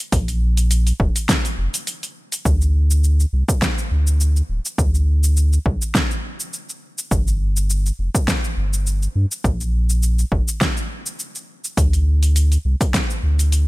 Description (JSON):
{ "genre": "sunset chillout", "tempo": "103 BPM", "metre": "4/4", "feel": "swing 55% on 16ths", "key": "unclear", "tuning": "A4 = 439 Hz", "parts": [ { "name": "deep house drum kit", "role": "drums", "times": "0.0-13.7 s", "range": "hi-hat, shaker, snare drum", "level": "-24 LUFS", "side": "equal", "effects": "overdrive" }, { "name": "warm sub bass", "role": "bass", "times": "0.1-13.7 s", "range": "D1 to G2", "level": "-16 LUFS", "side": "equal", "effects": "none" }, { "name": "electronic kick drum", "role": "drums", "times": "0.1-13.1 s", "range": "none", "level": "-20 LUFS", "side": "equal", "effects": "overdrive" } ], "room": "digital ambience", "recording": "none", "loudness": "-17 LUFS", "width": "side -20 dB against mid", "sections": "0.0-2.5 A section; 2.5-13.7 B section", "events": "break 1.9-2.5", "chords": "none", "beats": "| 0.13 0.71 1.29 1.87 | 2.46 3.04 3.62 4.20 | 4.79 5.37 5.95 6.53 | 7.12 7.70 8.28 8.86 | 9.45 10.03 10.61 11.19 | 11.78 12.36 12.94 13.52" }